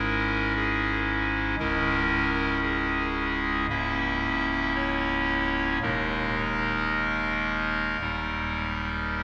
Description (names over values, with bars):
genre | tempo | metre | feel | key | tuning
classical, chorale-style piece for pipe organ | 55-58 BPM | 4/4 | rubato | unclear | A4 = 440 Hz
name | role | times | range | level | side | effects
chamber organ, clarinet reed | solo | 0.0-9.2 s | C#1 to E5 | -26 LUFS | equal | none
room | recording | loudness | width
wet church reverb, RT60 3.6 s | recorded in a church or concert hall | -26 LUFS | mono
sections
0.0-9.2 A section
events
none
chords
0.0 C#m/G#; 1.6 C#m; 3.7 A#dim/C#; 5.8 D#sus4; 8.0 D#